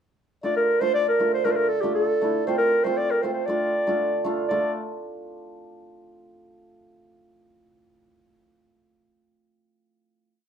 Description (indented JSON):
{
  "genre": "klezmer",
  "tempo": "118 BPM",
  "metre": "2/4",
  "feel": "straight",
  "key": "D minor",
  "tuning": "A4 = 440 Hz",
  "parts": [
    { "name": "mellow clarinet", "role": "melody", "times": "0.4-4.7 s", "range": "G4 to D5", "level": "-22 LUFS", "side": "equal", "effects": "none" },
    { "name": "hammered dulcimer", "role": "accompaniment", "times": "0.4-4.7 s", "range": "A3 to F4", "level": "-27 LUFS", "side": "right 2 dB", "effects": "none" }
  ],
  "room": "moderate studio reverb, RT60 0.6 s",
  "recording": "band playing live in one room",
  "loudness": "-21 LUFS",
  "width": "side -8 dB against mid",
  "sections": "0.4-4.5 A section; 4.5-5.5 final chord",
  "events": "none",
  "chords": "0.4 Dm; 2.5 F; 3.5 Dm",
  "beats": "| 0.44 0.95 | 1.46 1.97 | 2.48 2.98 | 3.49 4.00 | 4.50"
}